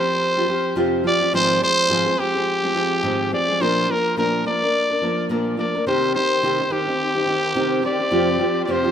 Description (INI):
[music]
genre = acoustic pop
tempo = 106 BPM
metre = 4/4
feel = swing 60% on 16ths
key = C minor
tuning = A4 = 440 Hz
[part]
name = growling trumpet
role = melody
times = 0.0-8.9 s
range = G4 to D5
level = -20 LUFS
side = equal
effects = ping-pong delay
[part]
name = nylon-string guitar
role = accompaniment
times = 0.0-8.9 s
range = F2 to Bb4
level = -22 LUFS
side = equal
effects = none
[part]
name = dark studio string section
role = sustained chords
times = 5.9-8.9 s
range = Eb3 to C5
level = -29 LUFS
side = right 1 dB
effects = none
[sound]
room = moderate lush hall reverb, RT60 2.8 s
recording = rough home demo mix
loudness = -18 LUFS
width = side -8 dB against mid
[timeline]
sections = 0.0-8.9 A section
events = none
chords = 0.0 Fsus2; 1.3 Ab6; 3.6 Bb; 5.9 Cm; 8.1 Fsus2